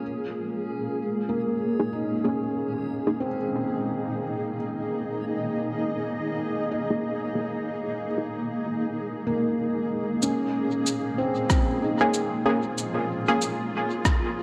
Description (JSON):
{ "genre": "ambient dub", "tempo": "94 BPM", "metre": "4/4", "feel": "swing 59% on 16ths", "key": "Bb minor", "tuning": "A4 = 440 Hz", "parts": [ { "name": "granular cloud pad", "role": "sustained chords", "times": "0.0-14.4 s", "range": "Bb3 to Eb5", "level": "-31 LUFS", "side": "equal", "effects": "built-in reverb, vintage 12-bit sampler grit" }, { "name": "backwards swelling texture", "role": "texture", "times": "0.0-10.2 s", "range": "Db4", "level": "-44 LUFS", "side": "equal", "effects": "built-in reverb" }, { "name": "felt-muted upright piano", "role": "arpeggios", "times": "1.3-14.4 s", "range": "Bb3 to Eb5", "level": "-32 LUFS", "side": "equal", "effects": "low-pass filter, tape echo" }, { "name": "filtered dub chord stab", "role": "stabs", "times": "1.8-13.4 s", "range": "Bb3 to Ab4", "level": "-29 LUFS", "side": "equal", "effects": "chorus, cassette tape, dub echo" }, { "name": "electronic cabasa and rim click", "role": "drums", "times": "10.2-14.2 s", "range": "none", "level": "-31 LUFS", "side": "equal", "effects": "low-pass filter on perc, low-pass filter on snare, low-pass filter on room, dub echo" }, { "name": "electronic kick drum", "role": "drums", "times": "11.5-14.2 s", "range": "none", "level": "-25 LUFS", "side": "equal", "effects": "overdrive" } ], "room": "moderate concert hall reverb, RT60 2.4 s", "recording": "dark, warm production", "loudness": "-27 LUFS", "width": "mono", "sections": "0.0-10.2 A section; 10.2-14.4 B section", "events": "filter sweep on ambient pad 0.0-10.2; filter sweep on felt piano 0.0-10.2", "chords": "0.0 Bbm7" }